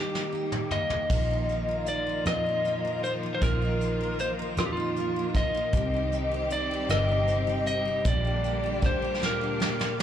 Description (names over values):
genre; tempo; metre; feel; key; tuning
six-eight pop ballad; 52 BPM (dotted quarters); 6/8; straight; unclear; A4 = 440 Hz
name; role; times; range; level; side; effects
lightly driven lead guitar; melody; 0.0-10.0 s; Eb4 to Eb5; -29 LUFS; equal; slapback echo, analog delay
picked steel-string acoustic guitar; accompaniment; 0.0-10.0 s; Bb2 to Bb4; -34 LUFS; equal; double-tracked left and right, slapback echo
bright studio string section; sustained chords; 0.0-10.0 s; D3 to G4; -34 LUFS; left 1 dB; none
soft brush drum kit; drums; 0.1-10.0 s; crash cymbal, hi-hat, kick drum, rim click, snare drum, toms; -30 LUFS; equal; none
vintage muted fingered electric bass; bass; 1.1-10.0 s; G1 to F2; -31 LUFS; equal; none
room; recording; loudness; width
light reverb, small room ambience; live gig heard through the venue's PA, club reverb; -25 LUFS; side -10 dB against mid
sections
0.0-1.1 A section; 1.1-10.0 B section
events
drum fill 0.0-1.1, 9.2-10.0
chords
0.0 Eb; 1.1 Bbsus4; 5.7 Cm; 8.1 Gm/Bb